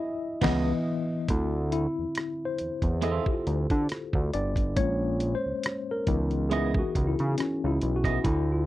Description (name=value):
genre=R&B, neo-soul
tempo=69 BPM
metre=4/4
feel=swing 55% on 16ths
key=unclear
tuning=A4 = 439 Hz
part: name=mellow tine electric piano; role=accompaniment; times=0.0-8.7 s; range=D3 to E5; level=-29 LUFS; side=left 2 dB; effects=medium stereo tremolo
part: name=clean electric guitar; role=second line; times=0.4-8.2 s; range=B3 to E5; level=-32 LUFS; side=right 8 dB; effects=spring reverb
part: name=fat analog bass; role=bass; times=0.4-8.7 s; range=G1 to D3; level=-28 LUFS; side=right 1 dB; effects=none
part: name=dusty soul sampler-style drum kit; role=drums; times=0.4-8.5 s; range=crash cymbal, hi-hat, kick drum, rim click, snare drum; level=-28 LUFS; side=right 1 dB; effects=none
room=little or no reverb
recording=dry, close 1970s-style studio recording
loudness=-25 LUFS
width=side -15 dB against mid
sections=0.0-1.3 A section; 1.3-8.7 B section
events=band accent 0.0-1.3; tine electric piano solo 0.0-1.3, 1.3-8.7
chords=0.0 C#m9; 1.3 Dm9; 4.8 Bbm9; 6.1 C#m9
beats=0.42 | 1.29 2.16 3.03 3.90 | 4.77 5.64 6.51 7.38 | 8.25